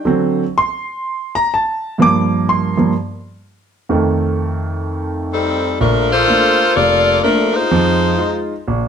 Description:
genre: jazz.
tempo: 126 BPM.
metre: 4/4.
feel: swing 66% on 8ths.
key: Bb major.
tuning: A4 = 441 Hz.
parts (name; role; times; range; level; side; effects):
warm concert grand piano; accompaniment; 0.0-8.9 s; F1 to D6; -16 LUFS; right 2 dB; none.
clear saxophone section; melody; 5.3-8.5 s; F3 to D5; -13 LUFS; left 2 dB; plate reverb.
room: moderate large studio reverb, RT60 0.8 s.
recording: none.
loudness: -13 LUFS.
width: side -7 dB against mid.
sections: 0.0-5.8 A section; 5.8-8.9 B section.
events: grand piano solo 0.0-5.8.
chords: 0.1 D7; 2.0 Gm7; 3.9 F9; 5.8 Bbmaj7; 7.7 Fm7.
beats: | 0.07 0.54 1.02 1.50 | 1.98 2.46 2.94 3.41 | 3.89 4.37 4.85 5.33 | 5.80 6.28 6.76 7.24 | 7.71 8.19 8.67.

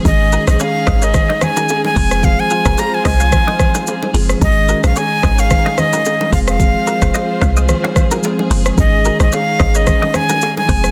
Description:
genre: afrobeats.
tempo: 110 BPM.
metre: 4/4.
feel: swing 55% on 16ths.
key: Ab major.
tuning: A4 = 441 Hz.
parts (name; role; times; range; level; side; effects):
bell-like tine electric piano; accompaniment; 0.0-10.9 s; Eb3 to Ab4; -23 LUFS; equal; none.
warm studio string section; sustained chords; 0.0-10.9 s; F3 to C5; -28 LUFS; equal; none.
breathy bright jazz flute; melody; 0.1-10.9 s; Eb5 to Bb5; -20 LUFS; equal; delay.
deep log drum bass; bass; 0.1-10.9 s; F1 to C2; -17 LUFS; equal; none.
afro-pop drum kit; drums; 0.1-10.9 s; hi-hat, kick drum, rim click, shaker; -19 LUFS; equal; vintage 12-bit sampler grit.
congas and bongos; percussion; 0.1-10.7 s; none; -25 LUFS; equal; none.
clean electric guitar; riff; 0.3-10.8 s; F4 to F5; -27 LUFS; equal; ensemble chorus, delay.
room: little or no reverb.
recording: dense, heavily limited modern master.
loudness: -14 LUFS.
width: mono.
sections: 0.0-10.9 A section.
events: none.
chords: 0.1 Absus4; 2.0 Fm; 4.4 Absus4; 6.3 Fm; 8.8 Absus4.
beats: | 0.05 0.60 1.14 1.69 | 2.23 2.78 3.32 3.87 | 4.42 4.96 5.51 6.05 | 6.60 7.14 7.69 8.23 | 8.78 9.32 9.87 10.41.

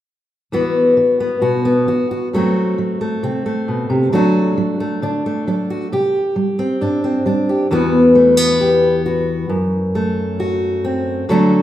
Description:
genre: folk.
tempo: 67 BPM.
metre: 4/4.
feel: straight.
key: E minor.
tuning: A4 = 441 Hz.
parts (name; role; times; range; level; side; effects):
fingerpicked steel-string acoustic guitar; accompaniment; 0.5-11.6 s; E2 to G4; -14 LUFS; equal; none.
room: wet recital hall reverb, RT60 1.8 s.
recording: recorded in a church or concert hall.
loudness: -14 LUFS.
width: side -12 dB against mid.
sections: 0.5-7.7 A section; 7.7-11.6 B section.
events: none.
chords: 0.5 Esus2; 2.3 F#dim; 4.1 D; 5.9 Csus2; 7.7 Esus2; 9.5 F#dim.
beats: | 0.53 1.43 2.33 3.22 | 4.12 5.02 5.92 6.81 | 7.71 8.61 9.50 10.40 | 11.29.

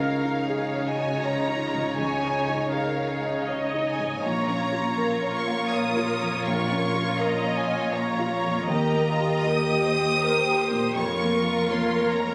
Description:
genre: cinematic, emotional film score for orchestra.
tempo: 80 BPM.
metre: 3/4.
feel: rubato.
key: unclear.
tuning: A4 = 441 Hz.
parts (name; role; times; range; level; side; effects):
rich studio violin section; melody; 0.0-12.3 s; F5 to Eb6; -32 LUFS; equal; none.
dark studio violin section; second line; 0.0-12.3 s; Eb4 to Db5; -32 LUFS; equal; none.
warm grand piano; accompaniment; 0.0-12.3 s; Bb1 to Bb5; -30 LUFS; equal; none.
warm studio viola section; accompaniment; 0.0-12.3 s; F4 to Eb5; -34 LUFS; equal; none.
dark studio double bass section; bass; 0.0-12.3 s; F1 to Eb2; -40 LUFS; equal; none.
rich studio cello section; bass; 0.0-12.3 s; Eb2 to Db3; -34 LUFS; equal; none.
room: moderate scoring stage reverb, RT60 1.6 s.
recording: recorded on a phone in the room, club reverb.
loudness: -25 LUFS.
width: mono.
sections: 0.0-12.3 A section.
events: none.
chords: 0.0 Dbadd9; 4.2 Bbm; 8.7 Eb; 11.0 Bbm/F.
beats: 0.49 1.24 | 1.98 2.73 3.48 | 4.23 4.98 5.72 | 6.46 7.19 7.94 | 8.69 9.47 10.21 | 10.96 11.70.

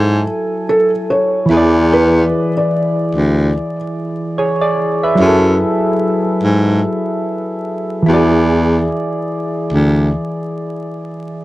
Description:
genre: lo-fi hip hop.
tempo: 73 BPM.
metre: 4/4.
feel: swing 56% on 16ths.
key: unclear.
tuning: A4 = 440 Hz.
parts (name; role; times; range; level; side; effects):
felt-muted upright piano; melody; 0.0-3.8 s; A4 to D5; -17 LUFS; equal; analog delay.
soft electric-piano-like synth keys; accompaniment; 0.0-11.4 s; E3 to G#5; -16 LUFS; equal; chorus.
warm baritone saxophone; bass; 0.0-10.1 s; D2 to G#2; -13 LUFS; equal; none.
room: moderate plate reverb, RT60 2.7 s.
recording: dark, warm production, vinyl crackle.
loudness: -13 LUFS.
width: side -17 dB against mid.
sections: 0.0-11.4 A section.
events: none.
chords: 0.0 F#m9; 1.5 E7; 5.2 F#m9; 8.1 E7.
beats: 0.27 1.09 | 1.91 2.74 3.56 4.38 | 5.20 6.02 6.85 7.67 | 8.49 9.31 10.13 10.96.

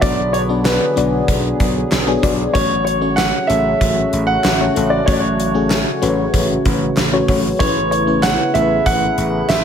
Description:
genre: 1980s-style pop.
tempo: 95 BPM.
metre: 4/4.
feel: straight.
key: F# minor.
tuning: A4 = 439 Hz.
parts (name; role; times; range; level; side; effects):
warm concert grand piano; melody; 0.0-9.6 s; B4 to F#5; -19 LUFS; right 2 dB; digital delay.
FM electric piano; accompaniment; 0.0-9.6 s; A3 to D5; -20 LUFS; left 5 dB; chorus.
sweeping resonant pad; sustained chords; 0.0-9.6 s; C#3 to G#4; -23 LUFS; right 2 dB; chorus, phaser.
vintage slap bass; bass; 0.0-9.6 s; A1 to B1; -22 LUFS; right 1 dB; none.
gated 80s drum kit; drums; 0.0-9.6 s; hi-hat, kick drum, snare drum; -19 LUFS; equal; gated reverb.
group handclap; percussion; 0.7-9.6 s; none; -33 LUFS; right 4 dB; none.
room: light reverb, small room reverb.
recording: none.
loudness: -14 LUFS.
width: side -8 dB against mid.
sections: 0.0-9.6 A section.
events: none.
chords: 0.0 Bm; 2.5 F#m/A; 7.6 Aadd9.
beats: | 0.02 0.66 1.29 1.92 | 2.55 3.18 3.81 4.44 | 5.08 5.71 6.34 6.97 | 7.60 8.23 8.87 9.50.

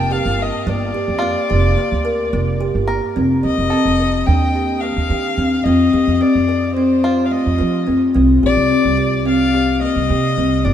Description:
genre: contemporary instrumental, chamber music in an uneven meter.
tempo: 216 BPM (eighths).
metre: 9/8.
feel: straight.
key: unclear.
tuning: A4 = 441 Hz.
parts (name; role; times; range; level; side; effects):
dark violin; melody; 0.0-10.7 s; C5 to G5; -21 LUFS; left 4 dB; none.
kalimba; arpeggios; 0.0-10.7 s; A3 to Bb4; -17 LUFS; left 1 dB; none.
upright bass; bass; 0.0-10.7 s; F1 to F3; -20 LUFS; right 2 dB; none.
bluegrass banjo; texture; 1.2-8.3 s; F4 to Bb4; -29 LUFS; right 1 dB; none.
room: moderate huge ambient reverb, RT60 6.4 s.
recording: heard from further back in the room.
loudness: -14 LUFS.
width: side -10 dB against mid.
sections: 0.0-3.2 A section; 3.2-10.7 B section.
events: none.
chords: 0.0 Gm7; 3.2 F7; 4.3 Ebmaj7; 5.7 F7; 8.2 Cm7.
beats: 0.11 0.39 | 0.66 0.94 1.22 1.50 1.77 2.05 2.33 2.60 2.88 | 3.16 3.44 3.71 3.99 4.27 4.55 4.83 5.10 5.38 | 5.66 5.93 6.21 6.49 6.77 7.04 7.32 7.60 7.88 | 8.15 8.43 8.71 8.99 9.26 9.54 9.82 10.10 10.37 | 10.65.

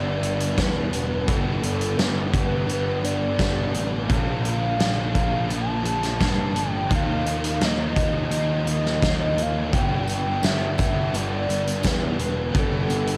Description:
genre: rock, shoegaze and dream pop.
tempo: 85 BPM.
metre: 4/4.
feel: straight.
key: unclear.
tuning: A4 = 437 Hz.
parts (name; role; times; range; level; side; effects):
pure sine lead; melody; 0.0-13.2 s; A4 to A5; -31 LUFS; equal; chorus, tape echo.
overdriven electric guitar; riff; 0.0-13.2 s; G2 to Eb4; -32 LUFS; equal; ensemble chorus, cassette tape.
overdriven electric guitar; riff; 0.0-13.2 s; G2 to Bb4; -33 LUFS; equal; reverse reverb, cassette tape.
fuzz picked electric bass; bass; 0.0-13.2 s; E1 to G2; -29 LUFS; equal; overdrive.
huge arena drum kit; drums; 0.2-13.2 s; hi-hat, kick drum, snare drum; -28 LUFS; equal; cassette tape.
tambourine; percussion; 9.7-13.1 s; none; -44 LUFS; equal; none.
room: studio reverb.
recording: home recording on cassette.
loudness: -23 LUFS.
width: mono.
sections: 0.0-13.2 A section.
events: none.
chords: 0.0 G; 4.1 Bbmaj7; 6.9 Ebsus2; 9.7 G.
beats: 0.58 | 1.28 1.99 2.69 3.40 | 4.10 4.80 5.51 6.21 | 6.92 7.62 8.32 9.03 | 9.73 10.43 11.13 11.84 | 12.54.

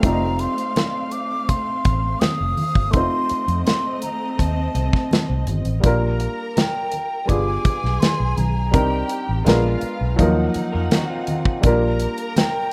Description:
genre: lush 1970s-style soul.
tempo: 83 BPM.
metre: 4/4.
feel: straight.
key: Bb major.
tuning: A4 = 440 Hz.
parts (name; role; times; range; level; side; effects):
clear studio string section; second line; 0.0-12.7 s; A3 to Bb5; -32 LUFS; equal; none.
warm baby grand piano; accompaniment; 0.0-12.7 s; F3 to Eb5; -26 LUFS; equal; none.
electric guitar through a small old amp; riff; 0.0-0.5, 10.7-11.6 s; G3 to Bb4; -33 LUFS; equal; spring reverb.
vintage muted fingered electric bass; bass; 0.0-12.1 s; F1 to F2; -24 LUFS; equal; none.
modern studio drum kit; drums; 0.0-12.5 s; hi-hat, kick drum, snare drum; -22 LUFS; equal; none.
congas; percussion; 0.0-12.5 s; none; -31 LUFS; equal; none.
breathy mellow silver concert flute; melody; 0.1-12.7 s; G5 to Eb6; -27 LUFS; equal; none.
room: moderate studio ambience, RT60 0.5 s.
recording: rough home demo mix.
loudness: -20 LUFS.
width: mono.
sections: 0.0-5.8 A section; 5.8-12.7 B section.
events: none.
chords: 0.0 F7; 5.8 Bb6; 7.3 G7b9; 8.7 Cm9; 9.5 Bb7b9; 10.2 Ebmadd9; 11.6 Bb6.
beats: | 0.03 0.76 1.49 2.21 | 2.94 3.66 4.39 5.11 | 5.84 6.56 7.29 8.01 | 8.74 9.46 10.19 10.91 | 11.64 12.36.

